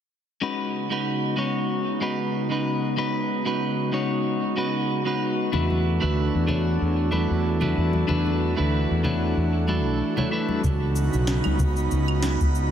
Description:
sunset chillout; 94 BPM; 4/4; swing 54% on 16ths; A4 = 439 Hz
clean electric guitar; accompaniment; 0.4-10.6 s; Ab3 to Db5; -26 LUFS; moving between left 4 dB and right 3 dB; auto-pan, diffuse ambient delay
airy breathy pad; sustained chords; 0.4-12.7 s; Db3 to A4; -27 LUFS; right 1 dB; chorus
mellow fretless electric bass; bass; 5.5-12.7 s; B1 to E2; -24 LUFS; equal
congas; percussion; 5.5-12.4 s; -31 LUFS; left 3 dB
electronic cabasa, snare drum and claves; drums; 10.6-12.7 s; -32 LUFS; equal; overdrive
electronic kick drum; drums; 10.6-12.5 s; -25 LUFS; equal; overdrive
twinkling granular texture; texture; 11.0-12.7 s; Cb6; -34 LUFS; right 4 dB; built-in reverb
moderate plate reverb, RT60 3.3 s; dreamy mix soaked in reverb; -22 LUFS; side -9 dB against mid
0.4-10.6 A section; 10.6-12.7 B section
filter sweep on analog synth pad 0.4-10.6
0.4 Db9sus4; 5.5 E9sus4; 10.6 Db9sus4

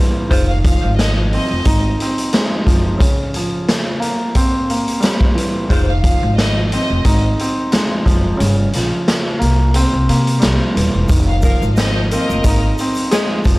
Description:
hip hop, boom-bap hip-hop; 89 BPM; 4/4; swing 54% on 16ths; F minor; A4 = 440 Hz
dark grand piano; accompaniment; 0.0-13.6 s; Db3 to Eb4; -20 LUFS; equal; high-pass filter, low-pass filter
clear saxophone section; stabs; 0.3-0.5, 5.7-5.9, 11.4-13.4 s; Ab3 to C5; -23 LUFS; left 1 dB; high-pass filter, low-pass filter, analog delay
upright bass; bass; 0.3-13.6 s; Eb1 to C3; -16 LUFS; equal
raw garage drum kit; drums; 0.3-13.6 s; hi-hat, kick drum, snare drum; -17 LUFS; equal
warm studio violin section; melody; 0.5-1.8, 5.9-7.2, 11.3-12.6 s; Eb5 to F5; -24 LUFS; left 1 dB; high-pass filter, low-pass filter, analog delay
tube shaker; percussion; 11.1-13.6 s; -38 LUFS; left 1 dB
small room ambience; dry, gritty hardware recording, vinyl crackle; -13 LUFS; side -21 dB against mid
0.0-11.1 A section; 11.1-13.6 A section
kick muted 8.4-11.1
0.3 Fm7; 3.0 Db; 4.0 C7; 5.7 Fm7; 8.4 Gm7b5; 9.4 C7; 11.1 Fm7

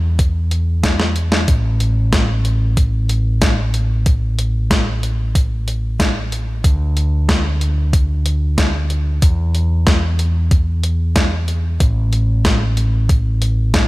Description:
synthwave; 93 BPM; 4/4; straight; A4 = 440 Hz
picked electric bass; bass; 0.0-13.9 s; A1 to E2; -16 LUFS; equal; tube saturation
clean 12-bit digital drum machine; drums; 0.2-13.9 s; hi-hat, snare drum; -20 LUFS; equal; gated reverb
electronic kick drum; drums; 0.2-13.9 s; -15 LUFS; equal
little or no reverb; -14 LUFS; side -20 dB against mid
0.0-13.9 A section
drum fill 1.0-1.5

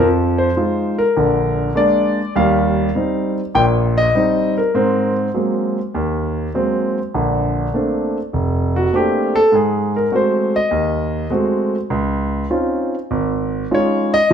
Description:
jazz; 100 BPM; 4/4; swing 69% on 8ths; Bb major; A4 = 440 Hz
warm concert grand piano; solo; 0.0-14.3 s; F1 to G5; -15 LUFS; equal
moderate large studio reverb, RT60 1.1 s; minimal, uncompressed stereo recording; -15 LUFS; side -8 dB against mid
0.0-7.1 A section; 7.1-14.3 B section
grand piano solo 7.1-14.3
0.0 Fm7; 1.2 Bb7; 2.4 Eb6; 4.7 Ab9; 7.1 Bbmaj9; 9.5 Ab7b9; 11.9 Dbmaj9

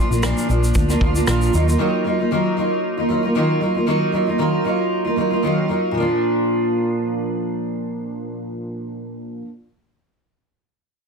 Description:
acoustic pop; 115 BPM; 4/4; swing 55% on 16ths; Bb major; A4 = 440 Hz
fingerpicked steel-string acoustic guitar; accompaniment; 0.0-9.5 s; Bb2 to F4; -19 LUFS; right 1 dB; double-tracked left and right
vintage muted fingered electric bass; bass; 0.1-1.7 s; Bb1 to Eb2; -19 LUFS; equal
vintage brush drum kit; drums; 0.1-1.8 s; kick drum, rim click, shaker; -21 LUFS; equal; soft clipping on snare
moderate studio reverb, RT60 0.8 s; dense, heavily limited modern master; -17 LUFS; side -5 dB against mid
0.0-6.0 A section; 6.0-10.1 B section
0.0 Bb; 1.5 Ebmadd9; 6.0 Bb

